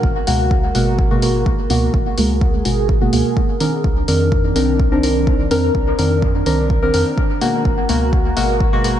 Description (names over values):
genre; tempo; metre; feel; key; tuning
dub techno; 126 BPM; 4/4; straight; unclear; A4 = 439 Hz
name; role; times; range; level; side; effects
dark analog pad; sustained chords; 0.0-9.0 s; Eb3 to Bb4; -23 LUFS; right 1 dB; chorus, sidechain pumping
deep mellow chord stab; stabs; 0.0-9.0 s; Cb3 to Bb4; -18 LUFS; equal; chorus, phaser, sidechain pumping, dub echo
soft dub sub bass; bass; 0.0-9.0 s; Ab1 to F2; -21 LUFS; equal; sidechain pumping
electronic kick drum; drums; 0.0-8.7 s; none; -18 LUFS; equal; none
electronic hi-hat; drums; 0.3-8.9 s; none; -27 LUFS; left 2 dB; none
room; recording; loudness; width
moderate lush hall reverb, RT60 1.9 s, digital ambience; dreamy mix soaked in reverb, nothing above 10.9 kHz; -14 LUFS; side -10 dB against mid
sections
0.0-9.0 A section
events
none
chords
0.0 Abm9; 3.8 Cm9; 7.7 Abm9